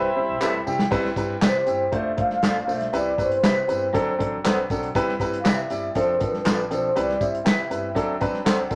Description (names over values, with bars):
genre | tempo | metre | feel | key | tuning
uptempo 1960s-style soul | 119 BPM | 4/4 | straight | C major | A4 = 444 Hz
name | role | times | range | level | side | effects
vibraphone with soft mallets | melody | 0.0-8.2 s | Bb4 to F5 | -27 LUFS | equal | none
mellow horn section | second line | 0.0-0.7 s | C4 to B5 | -28 LUFS | equal | none
warm upright piano | accompaniment | 0.0-8.8 s | F3 to A5 | -28 LUFS | equal | none
upright bass | bass | 0.0-8.8 s | F1 to D3 | -41 LUFS | equal | none
electric guitar through a small old amp | stabs | 0.4-8.6 s | F4 to F#5 | -32 LUFS | equal | spring reverb
handclaps and tambourine | percussion | 0.4-8.8 s | none | -35 LUFS | equal | none
warm soul drum kit | drums | 0.8-8.8 s | crash cymbal, hi-hat, kick drum, snare drum | -27 LUFS | equal | none
room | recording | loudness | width
moderate studio ambience, RT60 0.5 s | none | -23 LUFS | mono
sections
0.9-8.8 A section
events
drum fill 0.0-0.9; upright piano fill 8.0-8.8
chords
0.0 Cmaj7; 1.9 F6; 2.9 Cmaj7; 3.9 D7; 4.9 Cmaj7; 6.0 F6; 7.0 Cmaj7; 8.0 D7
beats
0.41 | 0.92 1.42 1.93 2.43 | 2.94 3.44 3.94 4.45 | 4.95 5.45 5.95 6.46 | 6.96 7.46 7.96 8.46